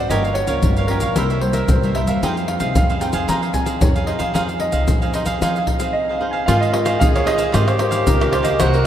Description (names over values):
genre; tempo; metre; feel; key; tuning
samba and choro; 113 BPM; 4/4; straight; F minor; A4 = 440 Hz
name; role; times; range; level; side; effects
warm concert grand piano; melody; 0.0-8.9 s; Bb4 to Bb5; -22 LUFS; right 2 dB; none
cavaquinho; accompaniment; 0.0-8.9 s; Eb4 to F5; -25 LUFS; right 3 dB; none
nylon-string guitar; accompaniment; 0.0-8.9 s; G2 to Bb4; -25 LUFS; left 2 dB; none
upright bass; bass; 0.0-8.9 s; G1 to F3; -23 LUFS; equal; none
maracas, surdo, pandeiro and tamborim; percussion; 0.1-8.9 s; none; -20 LUFS; left 1 dB; none
breathy tenor saxophone; second line; 6.5-8.9 s; F4 to Ab4; -22 LUFS; equal; none
room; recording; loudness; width
wet cathedral reverb, RT60 6.0 s; in a vast, echoing space; -16 LUFS; side -10 dB against mid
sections
0.0-6.5 A section; 6.5-8.9 B section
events
none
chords
0.1 Gm7b5; 1.2 C7; 2.2 Fm7; 6.5 Ab69